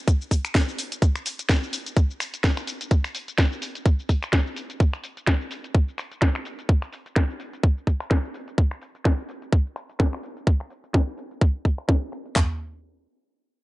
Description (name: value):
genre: house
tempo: 127 BPM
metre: 4/4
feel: swing 57% on 16ths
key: none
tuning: none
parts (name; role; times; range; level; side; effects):
- garage drum kit; drums; 0.1-12.5 s; handclaps, kick drum, toms; -19 LUFS; equal; overdrive
- garage drum kit; drums; 0.1-12.3 s; finger snaps, hi-hat, shaker, snare drum; -28 LUFS; left 1 dB; overdrive, low-pass filter on perc, low-pass filter on hats, low-pass filter on snare, low-pass filter on toms
room: little or no reverb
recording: nothing above 10.8 kHz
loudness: -22 LUFS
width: side -20 dB against mid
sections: 0.0-12.4 A section; 12.4-13.6 B section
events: filter sweep on drum 0.0-12.4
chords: none